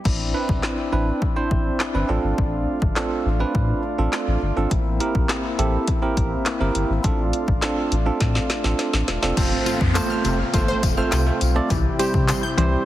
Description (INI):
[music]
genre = dance-pop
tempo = 103 BPM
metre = 4/4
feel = straight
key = unclear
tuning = A4 = 440 Hz
[part]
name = pipe organ, flutes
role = sustained chords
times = 0.1-12.8 s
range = C3 to G4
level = -28 LUFS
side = left 1 dB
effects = sidechain pumping
[part]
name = warm sub bass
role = bass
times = 0.1-12.8 s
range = D#1 to C3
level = -23 LUFS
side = left 1 dB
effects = sidechain pumping
[part]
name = deep house drum kit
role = drums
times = 0.1-12.7 s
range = crash cymbal, handclaps, hi-hat, kick drum, snare drum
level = -24 LUFS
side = left 1 dB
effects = none
[part]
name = bell-like tine electric piano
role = accompaniment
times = 0.3-12.8 s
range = G3 to D5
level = -25 LUFS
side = right 4 dB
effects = sidechain pumping
[part]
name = wide unison pluck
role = arpeggios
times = 9.4-12.7 s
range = C3 to G6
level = -28 LUFS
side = left 4 dB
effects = sidechain pumping, tape echo
[part]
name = tambourine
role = percussion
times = 9.4-12.4 s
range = none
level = -35 LUFS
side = left 9 dB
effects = none
[part]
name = downlifter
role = sound effects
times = 9.4-12.8 s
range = none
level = -31 LUFS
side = left 1 dB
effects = none
[sound]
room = light reverb, digital ambience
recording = heavily compressed radio sound, multiband compression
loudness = -19 LUFS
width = side -14 dB against mid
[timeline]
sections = 0.1-9.4 A section; 9.4-12.8 B section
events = drum fill 8.2-9.4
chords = 0.1 Cmaj9/A; 2.1 F6; 4.7 C7/A; 7.0 F6/A; 9.4 F; 11.7 C